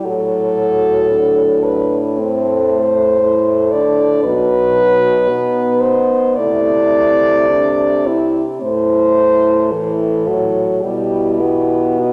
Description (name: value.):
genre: classical, lyrical piece for horn quartet.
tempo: 51-59 BPM.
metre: 4/4.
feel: rubato.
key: unclear.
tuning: A4 = 439 Hz.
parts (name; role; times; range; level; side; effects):
mellow French horn; melody; 0.0-12.1 s; E4 to D5; -17 LUFS; equal; none.
mellow French horn; second line; 0.0-12.1 s; C4 to F#4; -24 LUFS; equal; none.
mellow French horn; accompaniment; 0.0-12.1 s; E3 to B3; -22 LUFS; equal; none.
mellow French horn; bass; 0.0-12.1 s; A2 to C3; -24 LUFS; equal; none.
room: moderate scoring stage reverb, RT60 1.7 s.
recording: none.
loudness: -15 LUFS.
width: mono.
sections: 0.0-12.1 A section.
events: none.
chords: 0.0 F#dim/A; 4.3 B; 6.4 Am/C; 8.6 Am; 10.8 Em/B.